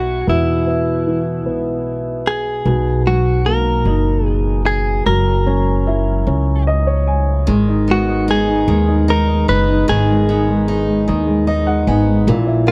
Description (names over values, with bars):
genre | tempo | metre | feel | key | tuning
six-eight pop ballad | 50 BPM (dotted quarters) | 6/8 | straight | G# minor | A4 = 440 Hz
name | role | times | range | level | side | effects
direct-recorded clean electric guitar | melody | 0.0-12.7 s | E4 to B4 | -22 LUFS | equal | tape echo
dark upright piano | accompaniment | 0.0-12.7 s | A#2 to G#5 | -20 LUFS | equal | none
upright bass | bass | 0.0-12.7 s | F#1 to E2 | -20 LUFS | equal | none
picked steel-string acoustic guitar | arpeggios | 7.5-12.7 s | D#3 to D#4 | -26 LUFS | equal | none
room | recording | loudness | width
little or no reverb | dry, close 1970s-style studio recording | -16 LUFS | mono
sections
0.0-7.5 A section; 7.5-12.7 B section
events
upright piano fill 6.3-7.5, 11.1-12.3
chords
0.0 E5; 2.7 Bmaj7; 5.1 F#7; 7.5 G#m